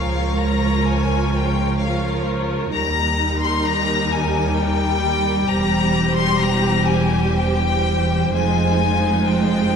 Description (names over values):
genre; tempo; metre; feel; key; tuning
classical, slow romantic movement for string orchestra; 59-67 BPM; 3/4; rubato; Eb major; A4 = 440 Hz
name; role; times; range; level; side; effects
rich chamber violin section; melody; 0.0-9.8 s; F5 to C6; -22 LUFS; left 7 dB; none
rich chamber violin section; second line; 0.0-9.8 s; F4 to Db5; -27 LUFS; right 1 dB; none
rich chamber viola section; accompaniment; 0.0-9.8 s; F3 to G4; -23 LUFS; right 1 dB; none
clear studio cello section; bass; 0.0-9.8 s; Db2 to F2; -24 LUFS; right 2 dB; none
rich chamber double bass section; bass; 0.0-9.8 s; E1 to Eb2; -23 LUFS; right 1 dB; none
room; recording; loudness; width
wet scoring stage reverb, RT60 1.8 s; heard from further back in the room; -17 LUFS; side -6 dB against mid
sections
0.0-9.8 A section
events
none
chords
0.0 Bbm/Db; 2.7 Eb; 5.5 C/E; 8.3 Fm7